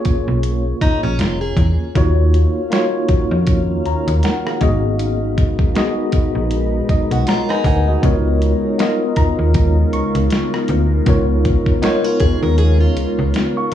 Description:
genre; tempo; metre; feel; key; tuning
contemporary R&B; 79 BPM; 4/4; swing 58% on 16ths; unclear; A4 = 440 Hz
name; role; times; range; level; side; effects
mellow tine electric piano; accompaniment; 0.0-13.7 s; Bb3 to Db6; -20 LUFS; left 1 dB; medium stereo tremolo
detuned 8-bit digital drum machine; drums; 0.0-13.7 s; hi-hat, kick drum, rim click, snare drum; -18 LUFS; equal; overdrive
slap-like FM bass; bass; 0.1-13.3 s; F1 to F2; -16 LUFS; equal; none
picked plugged-in steel-string acoustic guitar; arpeggios; 0.8-1.9, 7.1-13.7 s; Db4 to Bb4; -25 LUFS; right 1 dB; tape echo
soft round pluck; texture; 0.8-2.3, 9.2-12.4 s; Bb5 to Db6; -30 LUFS; left 1 dB; chorus, tape echo
glassy FM pad; sustained chords; 2.5-13.7 s; Db3 to F5; -24 LUFS; left 2 dB; ensemble chorus, built-in reverb, sidechain pumping
room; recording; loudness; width
light reverb; worn, warbling old tape, cassette tape, warbly pitch drift, studio reverb; -14 LUFS; side -11 dB against mid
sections
0.0-13.7 A section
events
tine electric piano fill 6.5-8.0; kick muted 12.6-13.7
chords
0.0 Bbm7; 2.0 Ebm9; 4.6 Abm7; 8.0 Db13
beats
0.43 1.19 | 1.95 2.71 3.47 4.23 | 4.99 5.75 6.51 7.27 | 8.03 8.79 9.55 10.31 | 11.07 11.83 12.59 13.35

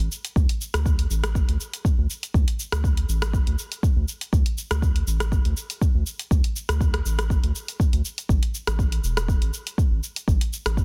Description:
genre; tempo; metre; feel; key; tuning
afro house; 121 BPM; 4/4; swing 54% on 16ths; unclear; A4 = 440 Hz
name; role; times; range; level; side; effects
round analog bass; bass; 0.0-10.8 s; E1 to D2; -26 LUFS; equal; sidechain pumping
deep house drum kit; drums; 0.0-10.8 s; hi-hat, rim click, shaker; -33 LUFS; equal; small room reverb, soft clipping on snare
electronic kick drum; drums; 0.4-10.8 s; none; -24 LUFS; equal; small room reverb
room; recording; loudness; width
little or no reverb; dense, heavily limited modern master; -24 LUFS; mono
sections
0.0-10.8 A section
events
none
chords
none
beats
| 0.36 0.86 1.35 1.85 | 2.34 2.84 3.33 3.83 | 4.33 4.82 5.32 5.82 | 6.31 6.81 7.30 7.80 | 8.29 8.79 9.29 9.78 | 10.28 10.77

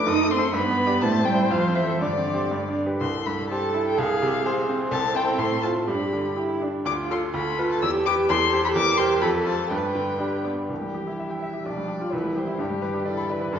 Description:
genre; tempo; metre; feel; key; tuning
quick classical-period movement for piano quartet; 126 BPM; 2/4; rubato; C major; A4 = 440 Hz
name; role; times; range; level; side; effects
muted violin; melody; 0.0-13.6 s; G4 to E6; -27 LUFS; left 6 dB; none
muted cello; second line; 0.0-13.6 s; D3 to B4; -27 LUFS; right 4 dB; none
bright baby grand piano; accompaniment; 0.0-13.6 s; B1 to B5; -26 LUFS; equal; none
muted viola; accompaniment; 0.0-13.6 s; D4 to D5; -30 LUFS; right 2 dB; none
room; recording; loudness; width
wet recital hall reverb, RT60 1.7 s; heard from further back in the room, nothing above 7.6 kHz; -21 LUFS; side -8 dB against mid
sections
0.0-3.0 A section; 3.0-10.7 B section; 10.7-13.6 C section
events
none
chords
0.1 F#dim7; 0.5 G; 1.0 Am; 1.5 F; 2.0 Gsus4; 2.5 G; 3.0 C; 4.0 Fm/C; 4.9 C; 5.4 F/A; 5.9 G; 6.9 Dm; 7.3 Bdim/D; 7.8 Em; 8.3 C/E; 8.8 C7/E; 9.2 F; 9.7 G; 10.7 C; 11.7 G7/B; 12.1 C; 12.6 G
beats
| 0.07 0.55 | 1.02 1.51 | 2.02 2.52 | 3.02 3.51 | 3.98 4.45 | 4.92 5.40 | 5.89 6.38 | 6.87 7.35 | 7.83 8.30 | 8.76 9.23 | 9.72 10.21 | 10.70 11.18 | 11.65 12.12 | 12.60 13.07 | 13.54

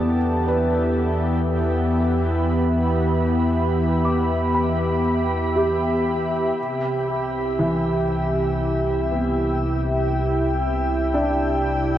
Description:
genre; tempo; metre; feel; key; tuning
ambient; 59 BPM; 4/4; straight; C major; A4 = 439 Hz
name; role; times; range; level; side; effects
warm analog pad; sustained chords; 0.0-12.0 s; C3 to B5; -21 LUFS; equal; chorus
felt-muted upright piano; arpeggios; 0.0-12.0 s; E3 to D6; -27 LUFS; equal; ping-pong delay
warm sub bass; bass; 0.0-12.0 s; C2 to E2; -26 LUFS; equal; none
drifting glass-harmonics texture; texture; 7.0-12.0 s; E6; -47 LUFS; right 1 dB; chorus, built-in reverb
room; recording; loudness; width
wet shimmer reverb, RT60 8.7 s; worn, warbling old tape, cassette tape, warbly pitch drift; -19 LUFS; side -12 dB against mid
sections
0.0-6.6 A section; 6.6-12.0 B section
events
none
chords
0.0 Em; 6.6 C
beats
0.48 1.49 | 2.51 3.53 4.54 5.56 | 6.58 7.60 8.61 9.63 | 10.65 11.66

